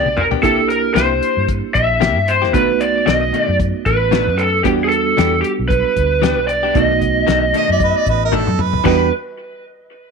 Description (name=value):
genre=straight-eighth soul blues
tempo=114 BPM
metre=4/4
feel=swing 55% on 16ths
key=E minor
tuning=A4 = 440 Hz
part: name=lead guitar through a small cranked amp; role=melody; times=0.0-9.1 s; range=G4 to E5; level=-16 LUFS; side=equal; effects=overdrive
part: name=mellow reed electric piano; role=accompaniment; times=0.0-9.1 s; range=G3 to G4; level=-21 LUFS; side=right 15 dB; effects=fast tremolo
part: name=direct-recorded clean electric guitar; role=stabs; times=0.0-9.1 s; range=B2 to G4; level=-22 LUFS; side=left 14 dB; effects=none
part: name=vintage muted fingered electric bass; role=bass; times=0.0-9.1 s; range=A1 to G2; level=-21 LUFS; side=left 1 dB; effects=none
part: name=cloth-damped thuddy drum kit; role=drums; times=0.1-9.0 s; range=crash cymbal, hi-hat, kick drum, snare drum, toms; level=-21 LUFS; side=left 4 dB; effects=none
part: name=warm harmonica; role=second line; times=7.6-9.1 s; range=D#4 to D#5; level=-21 LUFS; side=right 11 dB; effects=none
room=light reverb, studio ambience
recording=1960s-style stereo with parts hard left and right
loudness=-13 LUFS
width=side -5 dB against mid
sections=0.0-8.9 A section; 8.9-10.1 B section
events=drum fill 0.0-0.4, 8.3-8.9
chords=0.4 C7; 2.5 B7#9; 4.6 Em7; 6.7 B7#9; 8.9 Em7